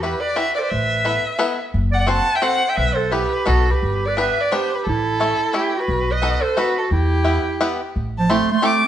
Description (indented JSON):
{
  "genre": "musette waltz",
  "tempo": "175 BPM",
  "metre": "3/4",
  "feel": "swing 54% on 8ths, rubato",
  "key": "E minor",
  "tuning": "A4 = 440 Hz",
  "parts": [
    { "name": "dark violin", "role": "melody", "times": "0.0-8.9 s", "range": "G4 to D6", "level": "-21 LUFS", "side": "equal", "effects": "none" },
    { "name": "clear clarinet", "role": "second line", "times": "0.0-8.9 s", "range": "F3 to F#5", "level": "-23 LUFS", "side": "right 4 dB", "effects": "none" },
    { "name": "bluegrass banjo", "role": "accompaniment", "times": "0.0-8.8 s", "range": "A3 to C5", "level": "-23 LUFS", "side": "left 2 dB", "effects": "none" },
    { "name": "upright bass", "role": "bass", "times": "0.0-8.4 s", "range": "F#1 to E2", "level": "-22 LUFS", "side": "equal", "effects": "none" }
  ],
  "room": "moderate stone room reverb, RT60 1.2 s",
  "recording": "band playing live in one room, nothing above 10.3 kHz",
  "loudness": "-17 LUFS",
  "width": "side -10 dB against mid",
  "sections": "0.0-8.0 A section",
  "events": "break 7.6-8.0",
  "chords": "0.0 Emadd9; 0.7 Asus2; 1.7 F#dim; 2.8 Em/B; 3.5 B; 3.8 G; 4.9 A; 5.9 B7; 6.9 Em; 8.0 Am7"
}